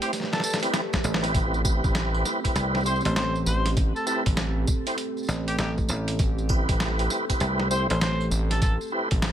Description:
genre	glitch hop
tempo	99 BPM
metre	4/4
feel	swing 64% on 16ths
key	A minor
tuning	A4 = 440 Hz
part	mellow harmonica	melody	0.0-8.7 s	G4 to C5	-31 LUFS	left 1 dB	vintage 12-bit sampler grit, dub echo
part	dark analog pad	sustained chords	0.0-9.3 s	A3 to D5	-33 LUFS	right 2 dB	chorus, sidechain pumping
part	tonewheel organ	stabs	0.0-9.1 s	C4 to C5	-29 LUFS	right 1 dB	overdrive, chorus vibrato, stopped rotary speaker, vintage 12-bit sampler grit, sidechain pumping, dub echo
part	boom bap sampler-style drum kit	drums	0.0-9.3 s	hi-hat, snare drum, tambourine	-29 LUFS	right 1 dB	small room ambience
part	swell	sound effects	0.5-1.3 s	none	-36 LUFS	equal	none
part	electronic kick drum	drums	0.9-9.2 s	none	-25 LUFS	equal	small room ambience
part	dry thumbed slap bass	bass	1.0-8.3 s	A1 to C2	-26 LUFS	equal	none
part	gritty driven synth bass	bass	1.3-9.3 s	A1	-26 LUFS	equal	tube saturation
room	little or no reverb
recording	none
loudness	-22 LUFS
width	side -10 dB against mid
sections	0.0-9.3 A section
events	drum fill 0.1-1.3; swell 0.5-1.3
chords	0.0 Am9

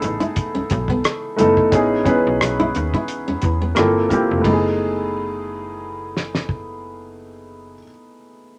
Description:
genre	R&B, neo-soul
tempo	88 BPM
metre	4/4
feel	swing 55% on 16ths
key	F# dorian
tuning	A4 = 440 Hz
part	nylon-string guitar	second line	0.0-4.7 s	A3 to E4	-25 LUFS	equal	none
part	warm baby grand piano	accompaniment	0.0-8.6 s	A3 to B4	-22 LUFS	equal	none
part	slap-like FM bass	bass	0.0-7.8 s	F1 to E2	-28 LUFS	equal	none
part	cloth-damped thuddy drum kit	drums	0.0-6.7 s	hi-hat, kick drum, ride cymbal, rim click, snare drum	-24 LUFS	equal	none
room	moderate studio reverb, RT60 0.6 s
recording	none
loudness	-19 LUFS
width	mono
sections	0.0-4.4 A section; 4.4-7.2 B section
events	none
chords	0.0 F#m11; 1.7 Amaj9; 3.8 Gm11; 4.4 F#m11

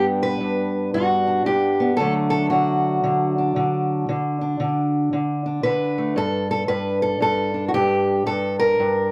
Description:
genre	acoustic country blues, solo or duo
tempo	114 BPM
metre	4/4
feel	swing 63% on 8ths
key	D major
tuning	A4 = 439 Hz
part	fingerpicked steel-string acoustic guitar	solo	0.0-9.1 s	G2 to B4	-21 LUFS	equal	none
room	light reverb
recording	close, detailed microphones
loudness	-21 LUFS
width	mono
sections	0.0-9.1 A section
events	none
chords	0.0 G; 2.0 D; 6.2 G5; 8.3 Gm

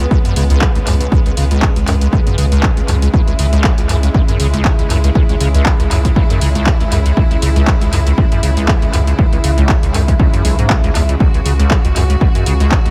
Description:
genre	acid house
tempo	119 BPM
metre	4/4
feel	swing 55% on 16ths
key	C# minor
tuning	A4 = 441 Hz
part	clear symphonic string section	sustained chords	0.0-12.9 s	C#3 to F#4	-24 LUFS	equal	sidechain pumping
part	liquid acid bass	riff	0.0-12.9 s	B1 to C#3	-19 LUFS	equal	tube saturation, analog chorus, tape echo
part	round analog bass	bass	0.0-12.7 s	B1 to C#2	-17 LUFS	equal	sidechain pumping
part	punchy analog drum machine	drums	0.0-12.9 s	handclaps, hi-hat	-24 LUFS	equal	tape echo
part	electronic kick drum	drums	0.1-12.8 s	none	-16 LUFS	equal	none
room	little or no reverb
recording	echo-heavy mix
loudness	-13 LUFS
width	mono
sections	0.0-12.9 A section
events	none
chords	0.0 C#m

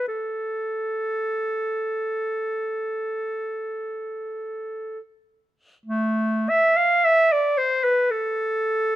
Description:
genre	classical, free, expressive piece for unaccompanied clarinet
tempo	31-58 BPM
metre	4/4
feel	rubato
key	A minor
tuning	A4 = 440 Hz
part	bright clarinet	solo	0.0-9.0 s	A3 to F5	-21 LUFS	equal	none
room	light reverb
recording	minimal, uncompressed stereo recording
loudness	-21 LUFS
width	side -14 dB against mid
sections	0.0-5.9 A section; 5.9-9.0 A section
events	none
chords	none

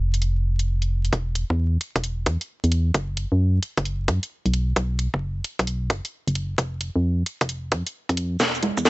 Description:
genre	UK garage, two-step garage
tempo	132 BPM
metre	4/4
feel	swing 65% on 16ths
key	unclear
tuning	A4 = 441 Hz
part	organ-like FM bass	bass	0.0-8.9 s	E1 to F#2	-22 LUFS	equal	sidechain pumping
part	garage drum kit	drums	0.1-8.9 s	congas, hi-hat, shaker, snare drum	-24 LUFS	right 1 dB	high-pass filter on hats, high-pass filter on snare, high-pass filter on perc
part	electronic kick drum	drums	1.1-8.8 s	none	-23 LUFS	equal	high-pass filter on kick
room	digital ambience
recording	vinyl crackle, high-pass filter, nothing above 8.0 kHz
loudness	-22 LUFS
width	side -20 dB against mid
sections	0.0-1.1 A section; 1.1-8.9 B section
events	build-up 1.1-8.9; filter sweep 1.1-8.9; drum fill 8.4-8.9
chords	none

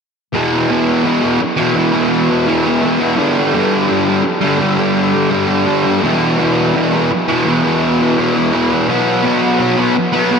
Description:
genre	rock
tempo	84 BPM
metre	4/4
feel	straight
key	unclear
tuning	A4 = 440 Hz
part	fuzz guitar	solo	0.3-10.4 s	E2 to B3	-12 LUFS	equal	distortion, analog chorus, ping-pong delay
room	wet huge ambient reverb, RT60 8.6 s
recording	dreamy mix soaked in reverb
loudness	-12 LUFS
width	side -6 dB against mid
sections	0.3-10.4 A section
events	none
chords	0.3 E5; 3.2 G5; 6.0 E5; 8.9 B5

